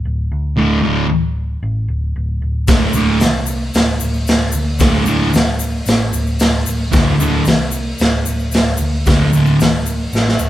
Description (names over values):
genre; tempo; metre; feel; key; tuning
garage rock duo or trio; 113 BPM; 4/4; straight; unclear; A4 = 437 Hz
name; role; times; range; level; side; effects
hollow-body short-scale picked electric bass; bass; 0.1-10.5 s; D1 to D2; -19 LUFS; equal; none
thick fuzz guitar; riff; 0.6-9.6 s; D2 to D3; -15 LUFS; equal; distortion
raw garage drum kit; drums; 2.7-10.4 s; hi-hat, kick drum, snare drum; -15 LUFS; equal; none
tube shaker; percussion; 2.7-10.5 s; none; -28 LUFS; left 6 dB; none
room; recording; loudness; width
light reverb; band playing live in one room; -13 LUFS; side -13 dB against mid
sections
0.0-10.5 A section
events
drum fill 10.1-10.5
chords
0.0 D5